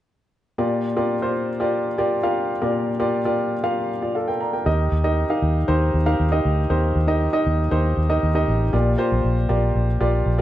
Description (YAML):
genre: pop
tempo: 118 BPM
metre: 4/4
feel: straight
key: Bb major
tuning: A4 = 442 Hz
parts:
  - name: clear upright piano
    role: accompaniment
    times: 0.6-10.4 s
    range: Bb2 to Bb5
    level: -21 LUFS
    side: equal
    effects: plate reverb
  - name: vintage muted fingered electric bass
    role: bass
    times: 4.7-10.4 s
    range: A1 to Eb2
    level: -20 LUFS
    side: equal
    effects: none
room: moderate large studio reverb, RT60 0.8 s, small room ambience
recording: nothing above 10.6 kHz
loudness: -19 LUFS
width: side -13 dB against mid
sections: 0.6-8.7 A section; 8.7-10.4 B section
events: none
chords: 0.6 Bb6; 4.7 Eb; 8.7 Bb6